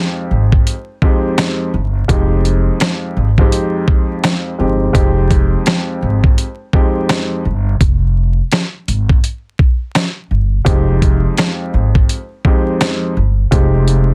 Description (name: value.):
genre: hip hop, boom-bap hip-hop.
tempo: 84 BPM.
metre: 4/4.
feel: swing 62% on 16ths.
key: F minor.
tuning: A4 = 440 Hz.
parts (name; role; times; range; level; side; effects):
dark concert grand piano; accompaniment; 0.0-14.1 s; F2 to G4; -21 LUFS; equal; high-pass filter, low-pass filter.
upright bass; bass; 0.3-14.1 s; F1 to Ab1; -16 LUFS; equal; none.
dusty soul sampler-style drum kit; drums; 0.5-14.1 s; hi-hat, kick drum, snare drum; -16 LUFS; equal; none.
room: little or no reverb.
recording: dense, heavily limited modern master, vinyl crackle.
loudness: -15 LUFS.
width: mono.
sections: 0.0-14.1 A section.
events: none.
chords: 0.0 Fm7; 7.8 Fm; 10.7 Fm7.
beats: 0.66 1.38 | 2.09 2.81 3.52 4.23 | 4.95 5.66 6.38 7.09 | 7.80 8.52 9.23 9.95 | 10.66 11.38 12.09 12.80 | 13.52.